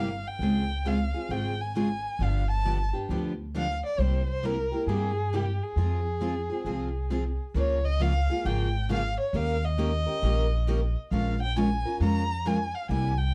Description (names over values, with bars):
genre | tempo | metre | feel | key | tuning
acoustic string swing (jazz manouche) | 134 BPM | 4/4 | swing 65% on 8ths | unclear | A4 = 440 Hz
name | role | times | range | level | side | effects
warm violin | melody | 0.0-13.3 s | G4 to Bb5 | -34 LUFS | equal | none
picked steel-string acoustic guitar | accompaniment | 0.0-13.1 s | C3 to Bb4 | -34 LUFS | equal | none
picked steel-string acoustic guitar | accompaniment | 0.0-13.1 s | C3 to Bb4 | -36 LUFS | equal | none
upright bass | bass | 0.0-13.3 s | G1 to G2 | -30 LUFS | equal | none
room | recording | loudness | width
moderate studio reverb, RT60 0.6 s | dark, warm production | -28 LUFS | mono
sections
0.0-7.6 A section; 7.6-13.3 B section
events
none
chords
0.4 Dbmaj7; 2.2 G7; 4.0 C7; 5.8 Fm; 7.6 Db6; 9.3 Eb7; 11.1 Bbm7